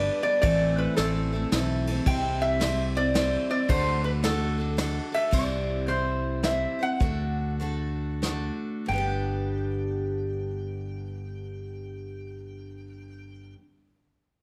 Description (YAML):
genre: honky-tonk and classic country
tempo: 88-110 BPM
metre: 3/4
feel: swing 65% on 8ths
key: G major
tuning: A4 = 440 Hz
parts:
  - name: lap resonator guitar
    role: melody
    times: 0.0-13.5 s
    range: A4 to G5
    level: -30 LUFS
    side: equal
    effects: none
  - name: picked steel-string acoustic guitar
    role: accompaniment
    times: 0.0-13.7 s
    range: G2 to C5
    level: -34 LUFS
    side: equal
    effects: none
  - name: fingered electric bass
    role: bass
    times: 0.0-13.5 s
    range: G1 to D2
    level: -33 LUFS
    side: equal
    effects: none
  - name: soft brush drum kit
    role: drums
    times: 0.4-8.4 s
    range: crash cymbal, hi-hat, kick drum, ride cymbal, snare drum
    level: -32 LUFS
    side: equal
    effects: none
room: moderate large studio reverb, RT60 1.4 s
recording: none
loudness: -27 LUFS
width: mono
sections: 0.0-5.3 A section; 5.3-8.9 B section; 8.9-13.0 C section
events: slowing down 5.3-8.9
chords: 0.4 Am; 2.1 C; 3.7 D; 5.3 C; 7.0 D; 8.9 G